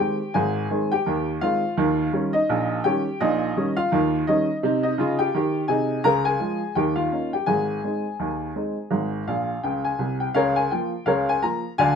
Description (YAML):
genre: ragtime piano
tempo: 84 BPM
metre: 2/4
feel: swing 59% on 16ths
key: Ab major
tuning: A4 = 440 Hz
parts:
  - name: clear upright piano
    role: solo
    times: 0.0-12.0 s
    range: Ab1 to Bb5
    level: -21 LUFS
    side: equal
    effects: none
room: moderate club reverb, RT60 0.6 s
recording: minimal, uncompressed stereo recording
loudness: -21 LUFS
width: side -6 dB against mid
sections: 0.0-10.4 A section; 10.4-12.0 B section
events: upright piano fill 9.3-10.4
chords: 0.0 Ab; 1.8 Eb7/Bb; 4.6 Ab/C; 6.1 Db; 6.8 Eb7; 7.5 Ab; 10.4 Bbm/Db